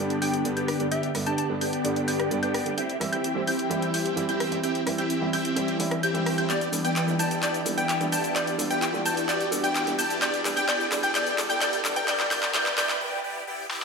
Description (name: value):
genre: EDM, festival progressive house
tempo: 129 BPM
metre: 4/4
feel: straight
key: E minor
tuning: A4 = 442 Hz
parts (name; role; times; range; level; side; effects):
- clear baby grand piano; accompaniment; 0.0-12.9 s; G2 to G4; -32 LUFS; right 3 dB; none
- lush unison pad; sustained chords; 0.0-13.0 s; D3 to G4; -34 LUFS; left 1 dB; chorus
- wide unison pluck; arpeggios; 0.0-13.0 s; G6; -32 LUFS; equal; dub echo
- supersaw chords; riff; 0.0-13.8 s; B3 to G5; -29 LUFS; equal; phaser, lush chorus, low-pass filter, dub echo
- riser; sound effects; 2.7-13.0 s; none; -37 LUFS; right 1 dB; none
- big-room dance drum kit; drums; 0.1-13.8 s; handclaps, hi-hat, rim click, shaker, snare drum; -30 LUFS; left 1 dB; overdrive, high-pass filter on hats, studio reverb, high-pass filter on snare, high-pass filter on perc
- plucky unison lead; melody; 0.2-1.5, 6.5-13.0 s; D5 to A5; -30 LUFS; left 2 dB; dub echo
room: wet lush hall reverb, RT60 2.1 s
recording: high-pass filter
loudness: -23 LUFS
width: side -4 dB against mid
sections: 0.0-13.8 A section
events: build-up 0.0-13.8; filter sweep on supersaw synth 0.0-13.8; filter sweep on synth pluck 0.0-13.8; filter sweep on analog synth pad 0.0-13.8; filter sweep 0.0-13.8; riser 2.7-13.0; drum fill 6.5-13.0; break 13.0-13.8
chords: 0.0 G; 2.8 C; 6.5 Em7